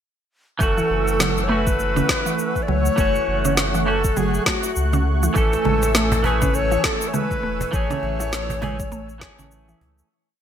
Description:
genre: organic downtempo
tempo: 101 BPM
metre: 4/4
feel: swing 58% on 16ths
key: F# minor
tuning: A4 = 441 Hz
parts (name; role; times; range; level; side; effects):
- breathy bright Native American-style cedar flute; melody; 0.6-9.5 s; F#4 to D5; -24 LUFS; left 1 dB; digital delay
- semi-hollow electric guitar; accompaniment; 0.6-10.1 s; E3 to A4; -27 LUFS; right 2 dB; analog chorus, sidechain pumping, ping-pong delay
- warm analog pad; sustained chords; 0.6-10.1 s; A3 to F#6; -28 LUFS; right 2 dB; chorus, sidechain pumping
- warm sub bass; bass; 0.6-10.0 s; E1 to C#2; -24 LUFS; equal; sidechain pumping
- electronic kick drum; drums; 0.6-9.4 s; none; -25 LUFS; equal; none
- electronic shaker, snare drum and congas; drums; 0.6-10.1 s; none; -24 LUFS; right 3 dB; gated reverb
- mallet-like synth pluck; arpeggios; 0.8-9.8 s; E3 to C#4; -28 LUFS; left 1 dB; chorus, ping-pong delay
- cajon; percussion; 5.5-9.9 s; none; -30 LUFS; right 1 dB; none
room: light reverb, digital ambience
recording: bright 1980s-style digital production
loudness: -18 LUFS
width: side -9 dB against mid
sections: 0.6-10.1 groove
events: fade-out 6.9-10.1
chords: 0.6 F#m7; 5.4 Amaj7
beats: | 0.60 1.20 1.79 2.39 | 2.98 3.58 4.17 4.76 | 5.36 5.95 6.55 7.14 | 7.73 8.33 8.92 9.52

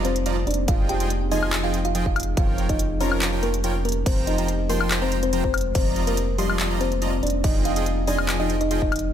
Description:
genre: future bass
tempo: 142 BPM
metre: 4/4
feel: half-time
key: F minor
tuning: A4 = 440 Hz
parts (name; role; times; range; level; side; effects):
- kalimba; melody; 0.0-9.0 s; G3 to G5; -26 LUFS; left 1 dB; sidechain pumping, digital delay
- ethereal airy pad; sustained chords; 0.0-9.1 s; F3 to Bb4; -32 LUFS; left 1 dB; ensemble chorus, built-in reverb, sidechain pumping
- big bright polysynth; riff; 0.0-8.8 s; F3 to C6; -28 LUFS; right 1 dB; sidechain pumping
- saturated sub bass; bass; 0.0-9.1 s; F1; -26 LUFS; equal; sidechain pumping
- trap drum kit; drums; 0.0-9.1 s; crash cymbal, handclaps, hi-hat, woodblock; -28 LUFS; left 2 dB; none
- electronic kick drum; drums; 0.7-8.9 s; none; -23 LUFS; equal; none
room: light reverb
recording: none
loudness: -20 LUFS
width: side -10 dB against mid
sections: 0.0-9.1 A section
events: none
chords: 0.5 Fm7; 2.4 Eb7/F; 4.1 Abmaj7/F; 5.8 Cm7/F; 7.2 Fm7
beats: 0.26 | 0.68 1.10 1.53 1.95 | 2.37 2.79 3.22 3.64 | 4.06 4.48 4.91 5.33 | 5.75 6.17 6.60 7.02 | 7.44 7.86 8.29 8.71 | 9.13

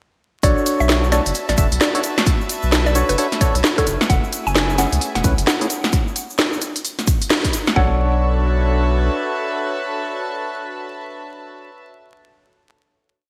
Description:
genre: UK garage, two-step garage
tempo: 131 BPM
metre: 4/4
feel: swing 62% on 16ths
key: B dorian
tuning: A4 = 440 Hz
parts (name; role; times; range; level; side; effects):
- mallet-like synth pluck; melody; 0.4-11.7 s; A4 to G#5; -27 LUFS; equal; chorus, phaser, digital delay
- percussive organ stab; stabs; 0.4-11.7 s; A3 to E5; -27 LUFS; equal; subtle chorus, digital delay
- saturated sub bass; bass; 0.4-9.1 s; E1 to C#2; -21 LUFS; equal; none
- electronic kick drum; drums; 0.4-7.9 s; none; -21 LUFS; equal; none
- garage drum kit; drums; 0.4-7.7 s; hi-hat, snare drum; -22 LUFS; equal; gated reverb
- egg shaker; percussion; 0.4-7.7 s; none; -34 LUFS; equal; none
- rich chamber string section; texture; 0.4-11.9 s; F#4 to A5; -30 LUFS; equal; sidechain pumping
- airy breathy pad; sustained chords; 4.1-11.7 s; A3 to C#5; -32 LUFS; equal; chorus, sidechain pumping
room: moderate lush hall reverb, RT60 2.0 s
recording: bright 1980s-style digital production, vinyl crackle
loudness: -19 LUFS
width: mono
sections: 0.4-7.8 drop; 7.8-11.4 final chord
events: drop 0.4-7.8; band accent 7.3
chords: 0.4 Bm7; 3.9 F#m7; 7.8 Bm7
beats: | 0.43 0.89 1.35 1.81 | 2.27 2.72 3.18 3.64 | 4.10 4.55 5.01 5.47 | 5.93 6.39 6.84 7.30 | 7.76 8.22 8.68 9.13 | 9.59 10.05 10.51 10.97

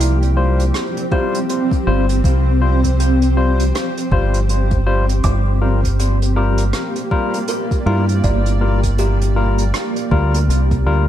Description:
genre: ambient dub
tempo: 80 BPM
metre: 4/4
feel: swing 60% on 16ths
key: G dorian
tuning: A4 = 438 Hz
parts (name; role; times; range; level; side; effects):
- granular cloud pad; sustained chords; 0.0-11.1 s; F3 to G5; -22 LUFS; right 1 dB; built-in reverb
- kalimba; arpeggios; 0.0-10.5 s; E4 to D6; -28 LUFS; right 3 dB; low-pass filter, dub echo
- deep dub fingered electric bass; bass; 0.0-11.1 s; G1 to G2; -15 LUFS; equal; none
- vintage brush drum kit; drums; 0.0-10.8 s; hi-hat, rim click; -28 LUFS; right 4 dB; none
- barky tine electric piano; stabs; 0.4-11.0 s; G3 to C5; -22 LUFS; left 4 dB; dub echo
- electronic kick drum; drums; 1.1-10.8 s; none; -19 LUFS; equal; none
room: light reverb, small room reverb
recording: none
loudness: -14 LUFS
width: side -11 dB against mid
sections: 0.0-11.1 A section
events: none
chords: 0.0 Gm7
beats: 0.74 1.49 | 2.24 2.99 3.74 4.49 | 5.24 5.99 6.74 7.49 | 8.24 8.99 9.74 10.49

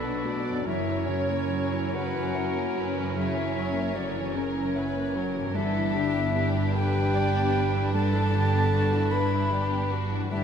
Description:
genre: cinematic, emotional film score for orchestra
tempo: 50 BPM (dotted quarters)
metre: 6/8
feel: rubato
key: unclear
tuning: A4 = 440 Hz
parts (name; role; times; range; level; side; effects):
- warm symphonic violin section; melody; 0.0-10.4 s; C#4 to D4; -34 LUFS; left 4 dB; none
- concert flute; second line; 0.0-10.4 s; B4 to B5; -32 LUFS; left 2 dB; none
- warm clarinet; second line; 0.0-10.4 s; D4 to E4; -38 LUFS; equal; none
- warm oboe; second line; 0.0-10.4 s; A4 to B4; -39 LUFS; right 1 dB; none
- warm symphonic violin section; second line; 0.0-10.4 s; E4 to D5; -36 LUFS; left 1 dB; none
- felt-muted upright piano; accompaniment; 0.0-10.4 s; B1 to E5; -34 LUFS; left 1 dB; none
- warm symphonic viola section; accompaniment; 0.0-10.4 s; C#3 to B3; -36 LUFS; right 2 dB; none
- mellow French horn section; sustained chords; 0.0-10.4 s; D3 to B4; -32 LUFS; equal; none
- warm symphonic cello section; bass; 0.0-10.4 s; F#2 to B2; -32 LUFS; right 2 dB; none
- warm symphonic double bass section; bass; 0.0-10.4 s; F#1 to B1; -32 LUFS; right 3 dB; none
- concert harp; arpeggios; 0.5-10.4 s; F#2 to A#5; -39 LUFS; left 6 dB; none
room: wet scoring stage reverb, RT60 1.6 s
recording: minimal, uncompressed stereo recording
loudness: -24 LUFS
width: side -7 dB against mid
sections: 0.0-10.4 A section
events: none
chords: 0.0 Bm7; 0.7 F#7; 5.5 Em7/G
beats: | 0.67 1.94 | 3.16 4.36 | 5.54 6.73 | 7.93 9.12 | 10.31

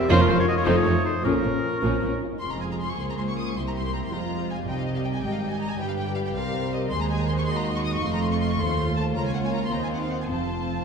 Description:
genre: quick classical-period movement for symphony orchestra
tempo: 106 BPM (dotted quarters)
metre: 6/8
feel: straight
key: F minor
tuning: A4 = 438 Hz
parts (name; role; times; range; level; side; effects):
- warm chamber violin section; melody; 0.0-10.8 s; Db4 to Eb6; -33 LUFS; left 2 dB; none
- bright oboe; second line; 0.0-2.2 s; Bb4 to E5; -29 LUFS; equal; none
- clear clarinet; second line; 0.0-2.2 s; A4 to Bb4; -31 LUFS; left 4 dB; none
- mellow bassoon; accompaniment; 0.0-2.2 s; F3 to G3; -29 LUFS; left 2 dB; none
- dark French horn section; sustained chords; 0.0-2.4 s; A3 to F4; -34 LUFS; left 2 dB; none
- mellow hollow concert flute; second line; 0.1-2.2 s; Db6 to Eb6; -33 LUFS; left 2 dB; none
- warm chamber violin section; second line; 0.1-10.8 s; C4 to Eb5; -31 LUFS; left 1 dB; none
- warm chamber viola section; accompaniment; 0.1-10.8 s; F3 to G4; -30 LUFS; equal; none
- warm chamber cello section; bass; 0.1-10.8 s; C2 to C3; -30 LUFS; right 3 dB; none
- warm chamber double bass section; bass; 0.1-10.8 s; F1 to Eb2; -30 LUFS; right 2 dB; none
- timpani; percussion; 0.1-1.8 s; F2 to Bb2; -32 LUFS; left 2 dB; none
room: wet scoring stage reverb, RT60 1.8 s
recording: heard from further back in the room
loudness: -23 LUFS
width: side -6 dB against mid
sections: 0.0-2.4 A section; 2.4-10.8 B section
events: none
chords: 0.1 Bbm/F; 0.7 F7; 1.2 Bbm; 2.4 Fm; 3.5 C7; 4.1 Fm; 4.7 Cm; 5.8 G; 6.3 C5; 6.9 Cdim/Eb; 8.0 F; 8.6 F7/Eb; 9.1 Bbm/Db; 9.7 Ebm69; 10.3 F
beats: | 0.11 0.67 | 1.25 1.83 | 2.41 2.98 | 3.55 4.12 | 4.67 5.24 | 5.80 6.35 | 6.91 7.46 | 8.03 8.59 | 9.15 9.72 | 10.30

